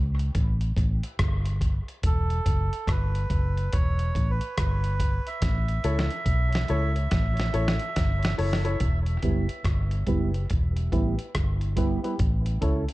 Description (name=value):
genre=dub reggae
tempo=71 BPM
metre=4/4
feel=swing 63% on 16ths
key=E dorian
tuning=A4 = 441 Hz
part: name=vintage muted fingered electric bass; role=bass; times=0.0-12.9 s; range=E1 to C#2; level=-25 LUFS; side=equal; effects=none
part: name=dusty soul sampler-style drum kit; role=drums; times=0.2-12.9 s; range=hi-hat, kick drum, rim click, snare drum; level=-27 LUFS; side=equal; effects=none
part: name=melodica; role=melody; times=2.1-8.3 s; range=A4 to E5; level=-34 LUFS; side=right 4 dB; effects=dub echo
part: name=bright upright piano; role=stabs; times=5.8-12.8 s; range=E4 to C#5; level=-34 LUFS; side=left 3 dB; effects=low-pass filter, dub echo
part: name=clean electric guitar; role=accompaniment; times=9.2-12.8 s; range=G3 to A4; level=-31 LUFS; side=right 6 dB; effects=low-pass filter, dub echo
room=little or no reverb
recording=dark, warm production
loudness=-23 LUFS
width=side -18 dB against mid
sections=0.0-8.8 A section; 8.8-12.9 B section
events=break 0.0-8.8; drum fill 5.4-8.8; filter sweep 8.8-12.9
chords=0.0 A; 2.0 Em; 5.4 A; 8.8 Em; 12.2 A